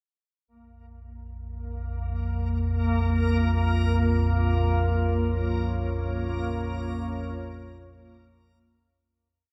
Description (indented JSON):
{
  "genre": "dark ambient drone",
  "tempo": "free time",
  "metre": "none",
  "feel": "none",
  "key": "Bb minor",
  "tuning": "A4 = 440 Hz",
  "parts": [
    { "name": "deep dark ambient pad", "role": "sustained chords", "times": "2.1-9.1 s", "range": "Bb3 to Db5", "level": "-34 LUFS", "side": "equal", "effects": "chorus, built-in reverb" },
    { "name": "deep rumbling drone", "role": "drone", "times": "1.2-9.2 s", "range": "Bb1 to F2", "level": "-28 LUFS", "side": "equal", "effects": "built-in reverb" },
    { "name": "backwards swelling texture", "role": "texture", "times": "0.5-9.1 s", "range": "Bb3 to Bb4", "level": "-35 LUFS", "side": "equal", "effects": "built-in reverb, shimmer reverb" }
  ],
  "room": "moderate plate reverb, RT60 2.7 s",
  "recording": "nothing above 10.3 kHz",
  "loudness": "-26 LUFS",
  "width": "mono",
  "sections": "0.5-9.1 A section",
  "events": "fade-in on ambient pad 0.5-9.1; fade-out 4.8-9.1",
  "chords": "0.5 Bbm",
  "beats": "free time"
}